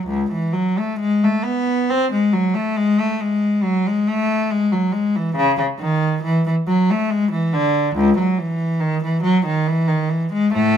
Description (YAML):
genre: classical, baroque-style suite movement for unaccompanied cello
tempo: 69 BPM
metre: 3/4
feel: rubato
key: unclear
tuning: A4 = 440 Hz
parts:
  - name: rich cello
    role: solo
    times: 0.0-10.8 s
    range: C#2 to B#3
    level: -16 LUFS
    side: equal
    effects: none
room: moderate stone room reverb, RT60 1.1 s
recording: minimal, uncompressed stereo recording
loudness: -17 LUFS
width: side -9 dB against mid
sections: 0.1-10.8 A section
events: none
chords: none